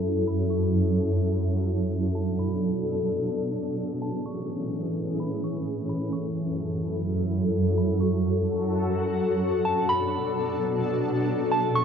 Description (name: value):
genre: hip hop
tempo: 128 BPM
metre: 4/4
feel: half-time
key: B dorian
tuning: A4 = 440 Hz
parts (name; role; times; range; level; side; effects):
- shimmering ambient pad; sustained chords; 0.0-11.8 s; F#2 to A4; -24 LUFS; equal; chorus, built-in reverb, cassette tape
- soft synth bell; melody; 0.3-11.8 s; A5 to C#6; -29 LUFS; right 2 dB; chorus, phaser, low-pass filter, analog delay
room: moderate studio reverb, RT60 0.5 s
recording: home recording on cassette, low-pass filter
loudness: -24 LUFS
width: side -7 dB against mid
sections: 0.0-9.4 A section; 9.4-11.8 B section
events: filter sweep 0.0-9.4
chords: 0.0 F#m7; 1.9 Bm7; 3.8 Amaj7; 5.7 F#m7; 9.4 Bm7; 11.3 Amaj7